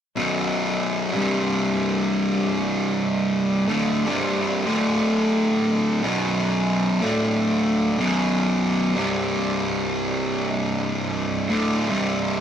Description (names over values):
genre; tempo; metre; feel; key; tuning
metal; 62 BPM; 4/4; swing 60% on 8ths; unclear; A4 = 440 Hz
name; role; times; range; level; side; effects
fuzz guitar; solo; 0.2-12.4 s; B1 to D3; -20 LUFS; equal; distortion
room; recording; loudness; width
wet small room reverb, RT60 0.6 s; rough rehearsal-room recording, tube saturation; -20 LUFS; side -9 dB against mid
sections
0.2-12.4 A section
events
none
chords
0.2 B5; 1.1 C5; 3.6 Csus2; 4.6 D5; 6.0 B5; 7.0 D5; 8.0 B5; 9.0 C5; 11.4 Csus2